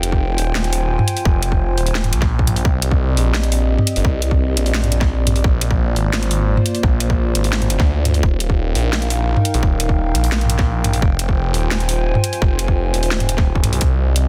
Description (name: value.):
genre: half-time drum and bass.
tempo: 172 BPM.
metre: 4/4.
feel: half-time.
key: unclear.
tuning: A4 = 440 Hz.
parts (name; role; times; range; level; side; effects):
dark analog pad; sustained chords; 0.0-14.3 s; Bb3 to Ab5; -27 LUFS; equal; chorus, sidechain pumping.
phased detuned saw bass; bass; 0.0-14.3 s; Eb1 to D2; -20 LUFS; equal; phaser, tube saturation.
drum and bass drum kit; drums; 0.0-14.2 s; hi-hat, snare drum, toms; -23 LUFS; equal; overdrive.
electronic kick drum; drums; 0.1-13.9 s; none; -19 LUFS; equal; overdrive.
room: little or no reverb.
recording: dense, heavily limited modern master.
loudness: -17 LUFS.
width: mono.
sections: 0.0-13.8 A section.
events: drop 0.0-13.8.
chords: 0.0 Fm7; 2.6 Cmadd9; 5.4 Bb; 8.2 Ebadd9; 11.0 Fm7.